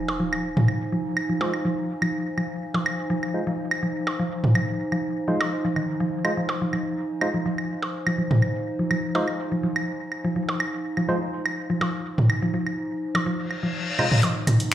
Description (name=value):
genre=minimal techno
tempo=124 BPM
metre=4/4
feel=straight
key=F minor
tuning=A4 = 440 Hz
part: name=sub drop, reverse cymbal and riser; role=sound effects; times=0.0-0.7, 13.5-14.7 s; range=none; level=-30 LUFS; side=left 4 dB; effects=none
part: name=warbly tape-like pad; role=texture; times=0.0-14.7 s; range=Eb4 to Ab5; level=-30 LUFS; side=right 1 dB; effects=chorus, built-in reverb
part: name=electronic percussion blips, claves and toms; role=percussion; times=0.1-14.6 s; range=none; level=-25 LUFS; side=right 1 dB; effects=dub echo
part: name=mallet-like synth pluck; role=riff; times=0.2-14.3 s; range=C3 to F3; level=-28 LUFS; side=equal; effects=chorus, cassette tape, tape echo
part: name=percussive organ stab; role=stabs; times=1.4-14.1 s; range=Ab3 to C5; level=-30 LUFS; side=right 1 dB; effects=chorus, dub echo
part: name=punchy analog drum machine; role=drums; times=14.2-14.7 s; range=finger snaps, hi-hat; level=-26 LUFS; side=equal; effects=none
part: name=woody FM bass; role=bass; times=14.5-14.6 s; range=F1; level=-38 LUFS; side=left 2 dB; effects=none
room=wet plate reverb, RT60 1.0 s, digital ambience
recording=played on a big sound system in a bare room, large studio reverb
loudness=-22 LUFS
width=side -12 dB against mid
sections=0.0-14.2 A section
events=impact 0.0-0.7; filter sweep on synth stab 0.0-14.2; reverse cymbal 13.5-14.2; riser 14.2-14.7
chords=0.0 Fm7; 14.2 F7(no3)